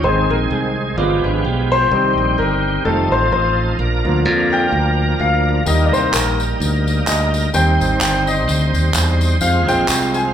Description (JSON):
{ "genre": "uptempo gospel", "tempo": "128 BPM", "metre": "4/4", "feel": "swing 57% on 8ths", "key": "Eb major", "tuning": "A4 = 443 Hz", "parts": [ { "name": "clear baby grand piano", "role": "accompaniment", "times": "0.0-10.3 s", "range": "D3 to Ab5", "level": "-18 LUFS", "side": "left 2 dB", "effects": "none" }, { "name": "bright tonewheel organ", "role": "sustained chords", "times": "0.0-10.3 s", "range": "Eb3 to C5", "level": "-21 LUFS", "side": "right 2 dB", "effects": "slow rotary speaker, chorus vibrato" }, { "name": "modern bright fingered electric bass", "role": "bass", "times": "0.0-10.3 s", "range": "F1 to F2", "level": "-18 LUFS", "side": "equal", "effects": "none" }, { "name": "clean electric guitar", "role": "second line", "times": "1.0-1.9 s", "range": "B3 to D5", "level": "-23 LUFS", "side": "right 7 dB", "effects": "none" }, { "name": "tambourine and handclaps", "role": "percussion", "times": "5.7-10.2 s", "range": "none", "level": "-22 LUFS", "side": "right 1 dB", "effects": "none" } ], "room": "wet large studio reverb, RT60 1.2 s", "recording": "band playing live in one room", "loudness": "-14 LUFS", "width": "side -9 dB against mid", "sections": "0.0-10.3 A section", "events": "grand piano solo 0.0-10.3", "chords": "0.0 Ab; 1.0 G7b9; 1.9 Cm; 2.9 F7; 3.8 Bb; 5.7 Eb; 7.5 Cm; 9.4 Fm" }